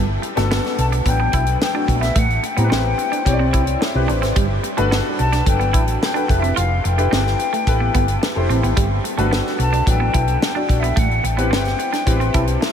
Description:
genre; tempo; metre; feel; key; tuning
polished 1980s jazz-funk pop; 109 BPM; 4/4; straight; G major; A4 = 443 Hz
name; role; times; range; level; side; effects
electric guitar at the edge of break-up; riff; 0.0-12.6 s; G3 to F4; -26 LUFS; right 6 dB; analog chorus
hollow-body short-scale fingered electric bass; bass; 0.0-12.6 s; F1 to A2; -20 LUFS; equal; none
tight funk drum kit; drums; 0.2-12.7 s; hi-hat, kick drum, snare drum; -22 LUFS; equal; none
warm grand piano; accompaniment; 0.4-12.7 s; F#3 to A5; -23 LUFS; left 2 dB; analog chorus
silver concert flute; melody; 0.8-12.7 s; E5 to A5; -24 LUFS; left 4 dB; none
room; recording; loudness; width
moderate huge ambient reverb, RT60 6.5 s; dreamy mix soaked in reverb; -16 LUFS; side -8 dB against mid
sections
0.0-12.7 A section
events
grand piano fill 3.5-4.4, 12.1-12.7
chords
0.0 Gmaj9; 2.2 Am9; 4.4 Gmaj9; 6.3 Fmaj9#11; 8.8 Gmaj9; 11.0 Am9

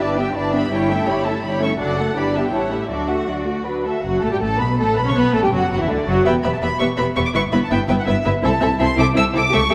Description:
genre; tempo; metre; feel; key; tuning
quick classical-period movement for string orchestra; 164 BPM; 3/4; straight; unclear; A4 = 440 Hz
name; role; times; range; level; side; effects
rich chamber violin section; melody; 0.0-9.7 s; D5 to E6; -26 LUFS; equal; none
rich symphonic violin section; second line; 0.0-9.7 s; D4 to F#5; -25 LUFS; equal; none
rich chamber viola section; accompaniment; 0.0-9.7 s; D3 to G4; -23 LUFS; equal; none
rich chamber double bass section; bass; 0.0-9.7 s; E1 to D2; -28 LUFS; equal; none
warm chamber cello section; bass; 0.0-9.7 s; C2 to A4; -28 LUFS; equal; none
room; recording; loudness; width
wet concert hall reverb, RT60 1.9 s; none; -19 LUFS; mono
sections
0.0-4.0 A section; 4.0-9.7 B section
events
none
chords
0.0 Em7/G; 0.7 A7/G; 1.8 D/F#; 2.2 Em7/G; 2.5 A7; 2.9 D; 4.0 F#madd11; 5.2 D; 6.3 Em; 7.3 Em/G; 8.4 Am/C

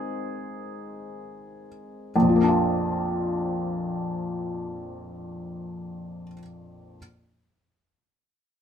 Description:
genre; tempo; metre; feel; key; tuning
neoclassical minimalist piano; 46 BPM (dotted quarters); 6/8; rubato; unclear; A4 = 439 Hz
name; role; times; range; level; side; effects
felt-muted upright piano; solo; 0.0-7.0 s; Bb1 to Ab4; -26 LUFS; left 1 dB; none
room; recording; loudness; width
moderate studio reverb, RT60 0.6 s; minimal, uncompressed stereo recording; -23 LUFS; side -8 dB against mid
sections
0.0-2.1 A section; 2.1-4.8 B section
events
slowing down 0.0-2.1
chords
0.0 Ab; 2.1 Bb

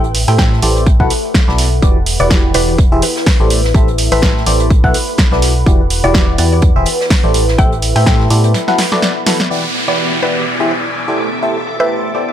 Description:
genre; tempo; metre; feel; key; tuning
piano house; 125 BPM; 4/4; swing 56% on 16ths; E minor; A4 = 440 Hz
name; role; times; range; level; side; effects
mallet-like synth pluck; melody; 0.0-12.3 s; B4 to G5; -21 LUFS; equal; chorus, ping-pong delay
barking FM electric piano; riff; 0.0-12.3 s; E3 to F#5; -17 LUFS; equal; phaser, sidechain pumping, ping-pong delay
organ-like FM bass; bass; 0.0-8.5 s; E1 to A2; -15 LUFS; equal; sidechain pumping
open jazz drum kit; drums; 0.0-9.4 s; hi-hat, snare drum; -27 LUFS; right 4 dB; sidechain pumping on hats, high-pass filter on hats, high-pass filter on snare, high-pass filter on room
deep dark ambient pad; texture; 0.0-12.3 s; B3 to B5; -22 LUFS; equal; chorus, built-in reverb, sidechain pumping
punchy analog drum machine; drums; 0.1-12.3 s; hi-hat, snare drum, tambourine; -18 LUFS; right 1 dB; low-pass filter on hats, low-pass filter on snare, low-pass filter on perc
electronic kick drum; drums; 0.4-8.2 s; none; -12 LUFS; equal; none
string machine, violins; sustained chords; 9.5-12.3 s; E4 to D6; -23 LUFS; right 1 dB; ensemble chorus, sidechain pumping
downlifter; sound effects; 9.5-12.3 s; none; -19 LUFS; equal; none
room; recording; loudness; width
light reverb, digital ambience; none; -10 LUFS; side -10 dB against mid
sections
0.0-9.5 A section; 9.5-12.3 B section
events
break 8.5-9.5; drum fill 8.5-9.5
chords
0.0 Am7; 0.9 B7sus4; 1.8 Em9; 2.8 E7alt; 3.5 Am7; 4.7 B7sus4; 5.7 Em9; 6.6 E7alt; 7.3 Am7; 8.5 B7sus4; 9.5 Em9; 10.5 E7alt; 11.2 Am7

